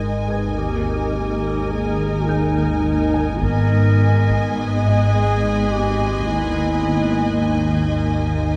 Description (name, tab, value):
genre	cinematic, suspense film score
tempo	105 BPM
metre	5/4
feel	straight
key	G# minor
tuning	A4 = 436 Hz
part	rich studio violin section	melody	0.0-8.6 s	G#5	-31 LUFS	equal	none
part	warm clarinet	second line	0.0-8.6 s	D#4 to A#4	-27 LUFS	equal	none
part	warm studio violin section	second line	0.0-8.6 s	D#5	-33 LUFS	equal	none
part	rich studio viola section	accompaniment	0.0-8.6 s	G#3 to A#4	-32 LUFS	equal	none
part	ethereal airy pad	sustained chords	0.0-8.6 s	D#4 to D#6	-34 LUFS	equal	ensemble chorus, built-in reverb
part	concert harp	riff	0.0-8.6 s	G#2 to D#4	-29 LUFS	equal	none
part	dark studio cello section	bass	0.0-8.6 s	D#2 to G#2	-25 LUFS	equal	none
part	rich studio double bass section	bass	0.0-8.6 s	G#1 to D#2	-27 LUFS	equal	none
part	analog drone	drone	0.0-8.6 s	G#1	-29 LUFS	equal	chorus
part	felt-muted upright piano	texture	0.0-8.6 s	G#4 to G#6	-35 LUFS	equal	none
part	taiko ensemble	drums	3.4-4.6 s	none	-31 LUFS	equal	none
part	warm studio violin section	texture	3.4-8.6 s	B#5 to B6	-41 LUFS	equal	none
room	wet scoring stage reverb, RT60 1.9 s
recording	none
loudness	-19 LUFS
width	mono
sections	0.0-8.6 A section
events	none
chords	0.0 G#m; 0.6 D#sus4/G#; 3.4 G#m; 6.3 D#sus4/G#